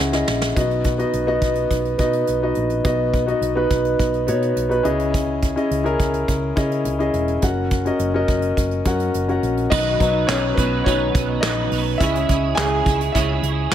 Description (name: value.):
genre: piano-driven pop.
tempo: 105 BPM.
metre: 4/4.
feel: straight.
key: B major.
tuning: A4 = 438 Hz.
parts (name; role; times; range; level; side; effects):
clear grand piano; accompaniment; 0.0-13.7 s; B2 to G#5; -20 LUFS; left 1 dB; none.
hollow-body short-scale picked electric bass; bass; 0.0-13.7 s; E1 to C#3; -24 LUFS; right 1 dB; none.
soft brush drum kit; drums; 0.1-13.7 s; crash cymbal, handclaps, hi-hat, kick drum, snare drum; -23 LUFS; right 1 dB; none.
twelve-string electric guitar; riff; 9.7-13.7 s; B2 to B4; -24 LUFS; right 8 dB; ensemble chorus.
room: light reverb, small room ambience.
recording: none.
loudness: -17 LUFS.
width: side -10 dB against mid.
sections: 0.0-9.7 A section; 9.7-13.7 B section.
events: drum fill 0.0-0.6; grand piano solo 9.7-13.7.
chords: 0.0 C#madd9; 0.6 B; 4.9 C#madd9; 7.4 F#; 9.7 B; 12.0 C#m.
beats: | 0.56 1.13 1.71 2.28 | 2.85 3.42 3.99 4.57 | 5.14 5.71 6.28 6.86 | 7.43 8.00 8.57 9.14 | 9.72 10.29 10.86 11.43 | 12.00 12.57 13.14 13.72.